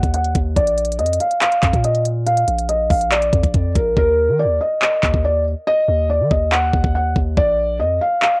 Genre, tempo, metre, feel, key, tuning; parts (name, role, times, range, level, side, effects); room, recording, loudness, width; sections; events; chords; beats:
hip hop, trap; 141 BPM; 4/4; half-time; A4 = 440 Hz
felt-muted upright piano; melody; 0.0-8.4 s; Bb4 to Gb5; -17 LUFS; equal; low-pass filter
long sustained 808-style bass; bass; 0.0-8.0 s; Bb1 to Eb3; -20 LUFS; equal
trap drum kit; drums; 0.0-8.3 s; handclaps, hi-hat, kick drum; -19 LUFS; equal
little or no reverb; home recording on cassette; -14 LUFS; side -28 dB against mid
0.0-8.4 A section
hi-hats muted 4.0-8.4
0.0 Ebm; 0.6 Bb; 4.0 N.C.; 7.4 Bb
0.14 | 0.56 0.99 1.42 1.84 | 2.27 2.69 3.12 3.54 | 3.97 4.39 4.82 5.24 | 5.67 6.09 6.52 6.95 | 7.37 7.80 8.22